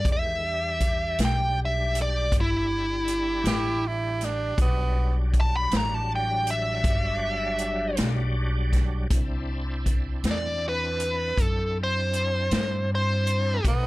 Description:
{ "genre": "slow blues", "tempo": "53 BPM (dotted quarters)", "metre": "12/8", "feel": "straight", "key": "E minor", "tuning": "A4 = 442 Hz", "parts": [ { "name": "dark smooth lead guitar", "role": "melody", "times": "0.0-13.7 s", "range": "E4 to B5", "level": "-26 LUFS", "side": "equal", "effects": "overdrive" }, { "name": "bright tonewheel organ", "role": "sustained chords", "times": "0.0-13.9 s", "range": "D#3 to C5", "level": "-36 LUFS", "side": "equal", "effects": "slow rotary speaker, chorus vibrato" }, { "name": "upright bass", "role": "bass", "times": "0.0-13.9 s", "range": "G1 to B2", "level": "-28 LUFS", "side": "equal", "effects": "none" }, { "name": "swinging big-band drum kit", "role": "drums", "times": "0.1-13.8 s", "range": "hi-hat, kick drum, snare drum", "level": "-26 LUFS", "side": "equal", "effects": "none" }, { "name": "bright tenor saxophone", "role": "second line", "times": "3.5-5.2, 13.7-13.9 s", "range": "B3 to G4", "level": "-29 LUFS", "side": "right 4 dB", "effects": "none" } ], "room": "little or no reverb", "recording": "none", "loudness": "-23 LUFS", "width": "side -19 dB against mid", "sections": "0.0-13.9 A section", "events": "none", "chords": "0.1 Em7; 9.1 C", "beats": "| 0.06 1.19 2.32 3.45 | 4.59 5.72 6.85 7.99 | 9.12 10.25 11.39 12.52 | 13.65" }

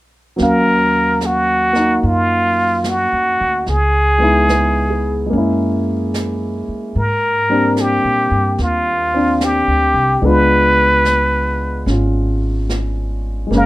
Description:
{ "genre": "jazz ballad", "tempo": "73 BPM", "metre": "4/4", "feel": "swing 67% on 8ths", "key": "unclear", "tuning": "A4 = 441 Hz", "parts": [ { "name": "trumpet with plunger mute", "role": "melody", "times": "0.4-13.7 s", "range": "F4 to Cb5", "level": "-15 LUFS", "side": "equal", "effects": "none" }, { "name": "warm grand piano", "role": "accompaniment", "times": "0.4-13.7 s", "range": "Gb3 to F5", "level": "-18 LUFS", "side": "equal", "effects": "none" }, { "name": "upright bass", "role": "bass", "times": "0.4-13.7 s", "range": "Gb1 to Bb2", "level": "-20 LUFS", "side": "equal", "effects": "none" }, { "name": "jazz brush drum kit", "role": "drums", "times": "0.4-13.7 s", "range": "brushed snare drum, hi-hat, snare drum", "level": "-29 LUFS", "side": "right 1 dB", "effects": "none" } ], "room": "light reverb", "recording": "rough home demo mix, faint mains hum", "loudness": "-13 LUFS", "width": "side -17 dB against mid", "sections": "0.4-13.7 A section", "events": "none", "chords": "0.4 Ebm9; 3.7 Dbm7; 5.3 Gb9; 6.9 Abmaj9#11; 10.2 Db7b9", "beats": "| 0.38 1.21 2.03 2.85 | 3.67 4.49 5.31 6.13 | 6.94 7.76 8.58 9.40 | 10.22 11.04 11.87 12.69 | 13.52" }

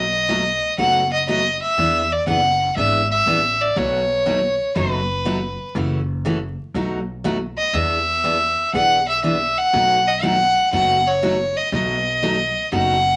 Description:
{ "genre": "country, western swing", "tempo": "121 BPM", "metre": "4/4", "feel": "swing 68% on 8ths", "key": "B mixolydian", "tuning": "A4 = 441 Hz", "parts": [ { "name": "clear fiddle", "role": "melody", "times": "0.0-13.2 s", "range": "B4 to F#5", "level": "-20 LUFS", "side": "equal", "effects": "none" }, { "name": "picked steel-string acoustic guitar", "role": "accompaniment", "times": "0.0-13.0 s", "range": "B2 to G#4", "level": "-27 LUFS", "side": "equal", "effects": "none" }, { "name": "upright bass", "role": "bass", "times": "0.0-13.2 s", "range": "F#1 to E2", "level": "-30 LUFS", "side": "equal", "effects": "none" } ], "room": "wet club reverb, RT60 0.6 s", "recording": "vinyl crackle", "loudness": "-19 LUFS", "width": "mono", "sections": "0.0-13.2 A section", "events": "none", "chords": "0.0 B7; 1.8 E7; 3.8 B7; 5.8 F#m7; 6.7 B7; 7.7 E7; 9.7 B7", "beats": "0.28 0.78 1.28 | 1.78 2.27 2.77 3.27 | 3.76 4.26 4.76 5.25 | 5.75 6.25 6.75 7.24 | 7.74 8.24 8.73 9.23 | 9.73 10.23 10.73 11.22 | 11.72 12.22 12.72" }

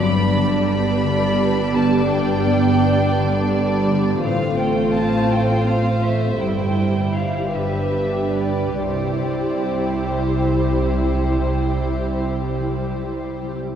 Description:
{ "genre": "classical, slow romantic movement for symphony orchestra", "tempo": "46-58 BPM (dotted quarters)", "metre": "12/8", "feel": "rubato", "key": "C major", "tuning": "A4 = 439 Hz", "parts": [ { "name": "warm chamber violin section", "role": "melody", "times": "0.0-13.4 s", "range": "C5 to B5", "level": "-28 LUFS", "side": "equal", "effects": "none" }, { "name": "warm studio violin section", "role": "second line", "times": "0.0-13.6 s", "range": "D4 to D5", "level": "-24 LUFS", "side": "left 2 dB", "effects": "none" }, { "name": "dark symphonic viola section", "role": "accompaniment", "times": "0.0-13.6 s", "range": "G3 to E4", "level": "-23 LUFS", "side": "right 2 dB", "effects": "none" }, { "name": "concert harp", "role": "arpeggios", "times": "0.0-13.8 s", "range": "G2 to C5", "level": "-25 LUFS", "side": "left 2 dB", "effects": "none" }, { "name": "rich symphonic double bass section", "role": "bass", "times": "0.0-13.6 s", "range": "G1 to C2", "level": "-26 LUFS", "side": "right 2 dB", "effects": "none" }, { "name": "warm symphonic cello section", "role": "bass", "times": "0.0-13.6 s", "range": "G2 to C3", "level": "-26 LUFS", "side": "right 2 dB", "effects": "none" } ], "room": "wet concert hall reverb, RT60 2.1 s", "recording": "heard from further back in the room", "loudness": "-17 LUFS", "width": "side -8 dB against mid", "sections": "0.0-13.8 A section", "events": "none", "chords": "0.0 G; 4.2 F/A; 6.4 C/G; 7.6 G; 8.8 C", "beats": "1.03 2.11 3.20 | 4.25 5.32 6.41 7.55 | 8.80 10.09 11.35 12.60" }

